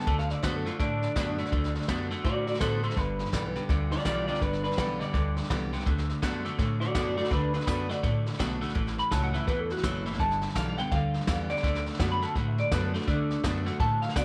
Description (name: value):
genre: rockabilly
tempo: 166 BPM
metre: 4/4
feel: swing 62% on 8ths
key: D major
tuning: A4 = 441 Hz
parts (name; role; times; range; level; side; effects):
- electric guitar through a small old amp; melody; 0.0-14.2 s; D4 to B5; -34 LUFS; equal; lush chorus, tape echo
- picked steel-string acoustic guitar; accompaniment; 0.0-14.2 s; E2 to G4; -40 LUFS; equal; none
- electric guitar at the edge of break-up; riff; 0.0-14.2 s; G2 to B3; -36 LUFS; equal; analog chorus
- vintage brush drum kit; drums; 0.0-14.2 s; hi-hat, kick drum, snare drum; -35 LUFS; equal; none
- upright bass; bass; 0.1-14.2 s; F#1 to C3; -34 LUFS; equal; none
room: light reverb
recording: none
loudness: -29 LUFS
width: mono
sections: 0.0-14.2 A section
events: clean electric guitar solo 0.0-14.2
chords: 0.1 D; 3.0 G; 5.9 D; 8.8 A; 10.2 G; 11.6 D